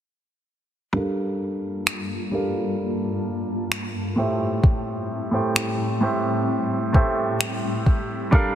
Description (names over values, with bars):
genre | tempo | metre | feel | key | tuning
contemporary R&B | 65 BPM | 4/4 | straight | unclear | A4 = 442 Hz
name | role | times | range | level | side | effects
bright grand piano | accompaniment | 0.9-8.6 s | A2 to G5 | -24 LUFS | right 1 dB | low-pass filter
granular cloud pad | sustained chords | 1.6-8.6 s | G2 to A5 | -29 LUFS | left 2 dB | built-in reverb, low-pass filter
smooth R&B drum kit | drums | 1.9-8.5 s | finger snaps, kick drum | -21 LUFS | equal | soft clipping on snare
room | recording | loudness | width
light reverb | dense, heavily limited modern master | -21 LUFS | side -10 dB against mid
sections
0.9-8.6 A section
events
filter sweep 0.9-8.6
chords
0.9 Gm9; 4.2 Am7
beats
| 0.94 1.86 2.79 3.71 | 4.63 5.56 6.48 7.40 | 8.32